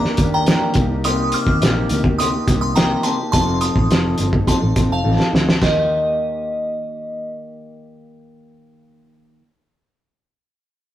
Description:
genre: indie pop, bedroom pop.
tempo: 105 BPM.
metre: 4/4.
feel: straight.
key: Eb lydian.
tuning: A4 = 440 Hz.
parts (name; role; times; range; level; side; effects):
glassy synth bell; second line; 0.0-7.3 s; Eb5 to F6; -22 LUFS; equal; chorus.
mellow electric guitar; accompaniment; 0.0-9.4 s; C3 to A4; -23 LUFS; left 1 dB; vibrato effect.
vintage muted fingered electric bass; bass; 0.0-9.4 s; F1 to Eb2; -22 LUFS; equal; none.
cloth-damped thuddy drum kit; drums; 0.0-5.8 s; hi-hat, kick drum, snare drum, splash cymbal; -18 LUFS; equal; none.
room: moderate stone room reverb, RT60 1.0 s.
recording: rough rehearsal-room recording.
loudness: -15 LUFS.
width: side -12 dB against mid.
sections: 0.0-5.6 A section; 5.6-7.9 B section.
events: drum fill 5.0-5.6.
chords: 0.0 Ebmaj7; 0.8 Cm7; 3.3 F7; 5.6 Eb.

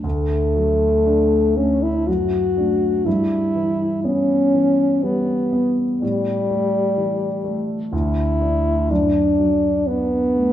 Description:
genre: classical, romantic duo for French horn and grand piano.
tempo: 61 BPM.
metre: 3/4.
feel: rubato.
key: D major.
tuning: A4 = 440 Hz.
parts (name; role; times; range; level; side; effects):
dark French horn; melody; 0.0-10.5 s; G3 to F#4; -18 LUFS; left 1 dB; none.
dark concert grand piano; accompaniment; 0.0-10.5 s; D2 to D4; -22 LUFS; right 1 dB; none.
room: wet recital hall reverb, RT60 1.5 s.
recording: recorded in a church or concert hall.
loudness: -17 LUFS.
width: side -11 dB against mid.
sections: 0.0-10.5 A section.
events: none.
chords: 0.0 D; 2.1 D/F#; 3.1 Em/G; 6.0 A5; 7.9 D5; 8.9 D/F#.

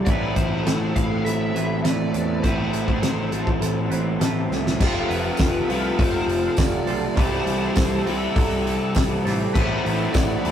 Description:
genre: rock, shoegaze and dream pop.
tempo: 101 BPM.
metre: 4/4.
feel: straight.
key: unclear.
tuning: A4 = 439 Hz.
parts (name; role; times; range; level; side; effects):
analog string pad; sustained chords; 0.0-10.5 s; C4 to B5; -33 LUFS; right 2 dB; ensemble chorus, phaser.
direct-recorded clean electric guitar; arpeggios; 0.0-10.5 s; C4 to C5; -35 LUFS; right 1 dB; none.
crunchy overdriven guitar; riff; 0.0-10.5 s; F2 to F4; -24 LUFS; equal; none.
twangy electric guitar; riff; 0.0-10.5 s; A2 to B4; -31 LUFS; right 2 dB; none.
growling picked electric bass; bass; 0.0-10.5 s; E1 to E2; -28 LUFS; equal; overdrive.
fuzz lead guitar; melody; 0.1-10.5 s; A4 to F5; -31 LUFS; right 2 dB; distortion.
loose indie drum kit; drums; 0.1-10.5 s; crash cymbal, hi-hat, kick drum, snare drum; -23 LUFS; equal; none.
tambourine; percussion; 5.4-10.3 s; none; -42 LUFS; right 4 dB; none.
room: wet stone room reverb, RT60 1.3 s.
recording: rough rehearsal-room recording, tube saturation.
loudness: -19 LUFS.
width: side -9 dB against mid.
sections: 0.0-4.8 A section; 4.8-10.5 B section.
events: drum fill 4.5.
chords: 0.1 Amadd9; 4.8 F; 7.2 C6; 9.5 Amadd9.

